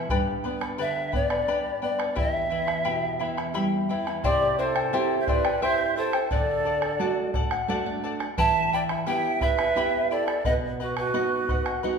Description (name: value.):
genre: andean folk, Andean ensemble.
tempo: 87 BPM.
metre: 3/4.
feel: straight.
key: E minor.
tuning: A4 = 441 Hz.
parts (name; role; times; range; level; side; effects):
charango; accompaniment; 0.0-12.0 s; E4 to B5; -29 LUFS; left 4 dB; none.
nylon-string guitar; accompaniment; 0.0-12.0 s; E2 to F#5; -31 LUFS; right 4 dB; none.
bombo; percussion; 0.1-11.8 s; none; -31 LUFS; right 1 dB; none.
polished pan flute; melody; 0.8-12.0 s; B4 to A5; -26 LUFS; equal; none.
breathy bright large quena; second line; 4.2-12.0 s; F#4 to F#5; -30 LUFS; right 4 dB; none.
room: wet large studio reverb, RT60 1.5 s.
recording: band playing live in one room, lossy compression artefacts.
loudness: -23 LUFS.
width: side -6 dB against mid.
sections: 0.0-4.2 A section; 4.2-12.0 B section.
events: nylon-string guitar fill 7.3-8.4.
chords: 0.1 G; 2.2 Em; 4.2 C; 6.3 D; 8.4 Em; 10.5 B.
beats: | 0.10 0.79 1.48 | 2.17 2.86 3.55 | 4.24 4.93 5.62 | 6.31 7.00 7.69 | 8.38 9.07 9.76 | 10.46 11.15 11.84.